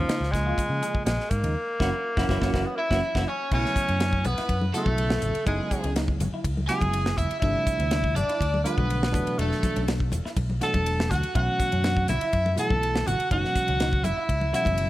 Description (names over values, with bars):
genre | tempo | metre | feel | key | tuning
electric jazz fusion | 122 BPM | 4/4 | straight | B dorian from 3.5 s | A4 = 439 Hz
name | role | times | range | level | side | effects
clear tenor saxophone | melody | 0.0-14.9 s | F3 to A4 | -28 LUFS | equal | none
bell-like tine electric piano | accompaniment | 0.0-14.9 s | B2 to F4 | -32 LUFS | right 2 dB | none
semi-hollow electric guitar | stabs | 0.0-14.7 s | C4 to Ab4 | -35 LUFS | equal | lush chorus
fingered electric bass | bass | 0.0-14.9 s | E1 to Db3 | -27 LUFS | equal | none
tight funk drum kit | drums | 0.1-14.9 s | crash cymbal, hi-hat, kick drum, ride cymbal, snare drum | -29 LUFS | equal | none
overdriven electric guitar | second line | 2.8-14.9 s | G#4 to A5 | -33 LUFS | equal | none
congas | percussion | 4.3-14.8 s | none | -33 LUFS | left 2 dB | none
room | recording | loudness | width
light reverb, small room ambience | none | -22 LUFS | side -16 dB against mid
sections
0.0-3.5 A section; 3.5-14.9 B section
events
drum fill 1.6-3.5; band accent 1.6-3.5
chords
0.0 Eb9sus4; 1.6 Gb7; 3.5 B9sus4; 5.5 F#9sus4; 7.4 G9sus4; 9.1 E9sus4; 11.4 B9sus4; 13.3 F#9sus4